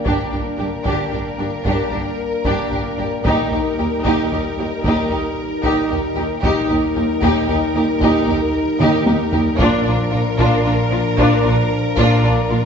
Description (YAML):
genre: cinematic, epic orchestral film score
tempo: 76 BPM (dotted quarters)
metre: 12/8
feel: straight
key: unclear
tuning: A4 = 441 Hz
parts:
  - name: mellow French horn section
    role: sustained chords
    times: 0.0-12.6 s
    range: F3 to Eb4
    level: -23 LUFS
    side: left 1 dB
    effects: none
  - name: rich symphonic violin section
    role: melody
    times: 0.1-12.7 s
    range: Bb4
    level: -25 LUFS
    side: left 3 dB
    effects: none
  - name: clear symphonic violin section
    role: second line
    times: 0.1-12.6 s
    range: F4 to G4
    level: -24 LUFS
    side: left 2 dB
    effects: none
  - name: rich symphonic viola section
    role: accompaniment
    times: 0.1-12.6 s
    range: D4 to Eb4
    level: -22 LUFS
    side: right 1 dB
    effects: none
  - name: rich symphonic cello section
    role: bass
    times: 0.1-12.6 s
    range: Eb2 to Bb2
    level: -24 LUFS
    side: right 2 dB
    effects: none
  - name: rich symphonic double bass section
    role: bass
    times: 0.1-12.6 s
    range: G1 to Eb2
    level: -24 LUFS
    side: right 2 dB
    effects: none
  - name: solo taiko drums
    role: drums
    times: 0.1-12.5 s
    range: none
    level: -25 LUFS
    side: equal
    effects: none
room: wet recital hall reverb, RT60 1.4 s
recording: recorded in a church or concert hall, nothing above 7.8 kHz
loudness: -15 LUFS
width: side -6 dB against mid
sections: 0.0-12.7 A section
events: drum fill 8.8-9.6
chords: 0.0 Gm; 3.3 Eb; 9.6 Bb